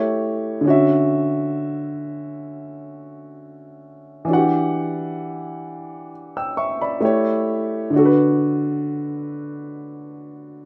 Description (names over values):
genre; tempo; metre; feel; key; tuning
R&B; 66 BPM; 4/4; swing 54% on 16ths; unclear; A4 = 440 Hz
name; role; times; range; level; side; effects
warm upright piano; solo; 0.0-10.7 s; D3 to E6; -22 LUFS; equal; none
room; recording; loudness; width
moderate studio reverb, RT60 0.7 s; rough home demo mix; -20 LUFS; mono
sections
0.0-10.7 A section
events
none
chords
0.0 A7; 0.7 Dmaj9; 4.3 Em9; 7.0 A7; 7.9 D6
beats
| 0.65 1.56 2.47 3.38 | 4.29 5.20 6.11 7.02 | 7.92 8.83 9.74 10.65